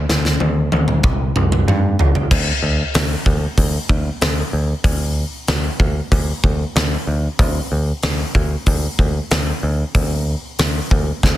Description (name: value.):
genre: hard rock.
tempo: 94 BPM.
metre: 4/4.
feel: straight.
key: unclear.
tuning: A4 = 445 Hz.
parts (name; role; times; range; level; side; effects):
picked electric bass; bass; 0.0-11.4 s; C2 to G2; -19 LUFS; equal; none.
huge arena drum kit; drums; 0.1-11.4 s; crash cymbal, hi-hat, kick drum, snare drum, toms; -18 LUFS; equal; none.
room: little or no reverb.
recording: dense, heavily limited modern master.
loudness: -16 LUFS.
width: side -14 dB against mid.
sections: 0.0-2.3 A section; 2.3-11.4 B section.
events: drum fill 0.0-2.3.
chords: none.